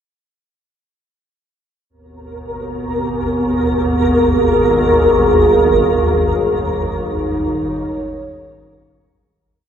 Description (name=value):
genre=dark ambient drone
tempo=64 BPM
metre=4/4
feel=straight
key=G# harmonic minor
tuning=A4 = 441 Hz
part: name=dark analog pad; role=sustained chords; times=2.7-9.4 s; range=B3 to C#5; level=-16 LUFS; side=right 1 dB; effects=chorus
part: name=swarming drone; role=drone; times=2.6-9.5 s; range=G#1 to D#2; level=-19 LUFS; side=equal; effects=built-in reverb, wide subtle chorus
part: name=flickering grainy texture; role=texture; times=2.3-9.4 s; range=A#4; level=-21 LUFS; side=equal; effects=built-in reverb, ensemble chorus, shimmer reverb
part: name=old church bells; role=arpeggios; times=4.7-9.7 s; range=G2 to D#4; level=-26 LUFS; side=right 1 dB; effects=tape echo
room=wet lush hall reverb, RT60 2.9 s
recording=dreamy mix soaked in reverb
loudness=-13 LUFS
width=side -8 dB against mid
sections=1.9-9.4 A section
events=fade-in on church bells 1.9-9.4; fade-out 5.7-9.4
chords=1.9 G#madd9; 5.7 D#add11